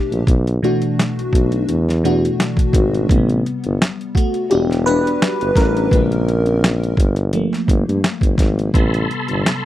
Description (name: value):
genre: R&B, neo-soul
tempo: 85 BPM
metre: 4/4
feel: swing 54% on 16ths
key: unclear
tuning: A4 = 439 Hz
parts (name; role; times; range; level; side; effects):
- FM electric piano with soft pad layer; accompaniment; 0.0-9.7 s; B2 to B4; -19 LUFS; left 1 dB; chorus, phaser
- warm tuba; bass; 0.1-9.4 s; E1 to G2; -18 LUFS; equal; none
- boom bap sampler-style drum kit; drums; 0.1-9.6 s; hi-hat, kick drum, snare drum; -16 LUFS; equal; none
- tonewheel organ; sustained chords; 8.7-9.7 s; A4 to C6; -23 LUFS; equal; chorus vibrato, fast rotary speaker
room: little or no reverb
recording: dry, close 1970s-style studio recording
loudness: -14 LUFS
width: side -14 dB against mid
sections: 0.0-3.1 A section; 3.1-9.7 B section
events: FM electric piano solo 3.1-9.7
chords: 0.3 Bm7; 1.7 E9sus4; 3.1 Am9; 4.5 Em9; 5.9 Bbm9; 7.0 Gm9; 8.7 Am9